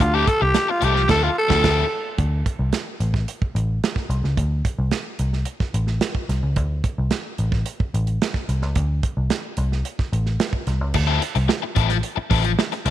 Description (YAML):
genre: funk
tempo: 110 BPM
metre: 4/4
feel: straight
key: D minor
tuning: A4 = 440 Hz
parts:
  - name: growling tenor saxophone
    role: melody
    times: 0.0-2.2 s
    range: F4 to A4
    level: -20 LUFS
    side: equal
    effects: none
  - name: biting overdriven guitar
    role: accompaniment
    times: 0.0-1.8, 10.9-12.9 s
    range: F3 to A4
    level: -24 LUFS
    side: left 13 dB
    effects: none
  - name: vintage muted picked electric bass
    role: bass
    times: 0.0-12.9 s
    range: A1 to D2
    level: -21 LUFS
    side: equal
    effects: none
  - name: warm soul drum kit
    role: drums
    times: 0.0-12.9 s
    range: crash cymbal, hi-hat, kick drum, snare drum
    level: -24 LUFS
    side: right 3 dB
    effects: none
room: light reverb, studio ambience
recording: 1960s-style stereo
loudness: -19 LUFS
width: side -12 dB against mid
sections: 0.0-2.2 A section; 2.2-10.9 B section; 10.9-12.9 C section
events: tenor saxophone solo 0.0-2.2; band accent 1.1-2.2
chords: 0.0 Dm9; 2.2 D5; 10.9 Dm9 (rootless)